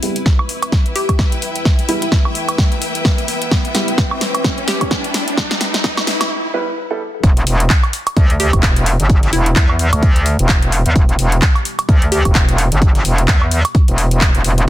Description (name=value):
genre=bass house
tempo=129 BPM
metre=4/4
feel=swing 58% on 16ths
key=E minor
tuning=A4 = 439 Hz
part: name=deep dark ambient pad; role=sustained chords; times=0.0-14.6 s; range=E3 to B4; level=-36 LUFS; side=equal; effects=none
part: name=dark baby grand piano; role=stabs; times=0.0-7.0 s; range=G3 to B4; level=-23 LUFS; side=right 2 dB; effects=sidechain pumping, low-pass filter, ping-pong delay
part: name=big-room dance drum kit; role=drums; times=0.0-14.7 s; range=handclaps, hi-hat, snare drum, woodblock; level=-19 LUFS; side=equal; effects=none
part: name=riser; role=sound effects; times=1.4-6.3 s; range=none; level=-25 LUFS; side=equal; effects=none
part: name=clear symphonic string section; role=texture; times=0.0-6.3 s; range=E4 to G5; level=-24 LUFS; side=left 2 dB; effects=sidechain pumping
part: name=electronic kick drum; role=drums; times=0.3-14.3 s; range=none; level=-13 LUFS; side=equal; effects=overdrive
part: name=hollow square pluck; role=melody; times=1.0-4.8, 8.4-12.2 s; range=E4 to G4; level=-22 LUFS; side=equal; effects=chorus, ping-pong delay
part: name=metallic wobble bass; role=bass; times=7.2-14.7 s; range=E1 to E2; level=-14 LUFS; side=equal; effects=chorus, overdrive, sidechain pumping
part: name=breakbeat sampler-style drum kit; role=drums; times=7.2-14.6 s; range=hi-hat, snare drum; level=-30 LUFS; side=equal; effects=none
room=digital ambience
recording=dense, heavily limited modern master, high-pass filter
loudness=-12 LUFS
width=side -14 dB against mid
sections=0.0-7.2 A section; 7.2-14.7 B section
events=build-up 0.0-7.2; drum fill 0.0-6.3; filter sweep on grand piano 0.0-7.2; filter sweep on ambient pad 0.0-7.2; filter sweep 0.0-7.2; riser 1.4-6.3; break 6.3-7.2; drop 7.2-14.7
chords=0.0 Em